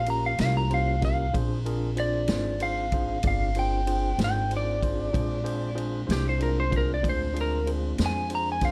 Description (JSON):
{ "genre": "slow blues", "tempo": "63 BPM (dotted quarters)", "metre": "12/8", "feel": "straight", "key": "Bb mixolydian", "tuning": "A4 = 440 Hz", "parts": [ { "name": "electric slide guitar", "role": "melody", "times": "0.0-8.7 s", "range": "G4 to Bb5", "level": "-31 LUFS", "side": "equal", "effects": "none" }, { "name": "mellow tonewheel organ", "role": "sustained chords", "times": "0.0-8.7 s", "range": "Ab3 to Ab4", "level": "-39 LUFS", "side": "equal", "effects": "chorus vibrato, slow rotary speaker" }, { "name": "upright bass", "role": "bass", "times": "0.0-8.7 s", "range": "G1 to F2", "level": "-31 LUFS", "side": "equal", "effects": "none" }, { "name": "overdriven tine electric piano", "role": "accompaniment", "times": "0.1-8.7 s", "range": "Db4 to D5", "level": "-36 LUFS", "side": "equal", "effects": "none" }, { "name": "swinging big-band drum kit", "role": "drums", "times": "0.1-8.7 s", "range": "kick drum, ride cymbal, snare drum", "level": "-34 LUFS", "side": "equal", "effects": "none" } ], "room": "studio ambience", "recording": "dark, warm production", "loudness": "-27 LUFS", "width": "mono", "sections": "0.0-8.7 A section", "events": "electric slide guitar solo 0.0-8.7", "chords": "0.0 Eb7 (rootless); 1.3 Bb7" }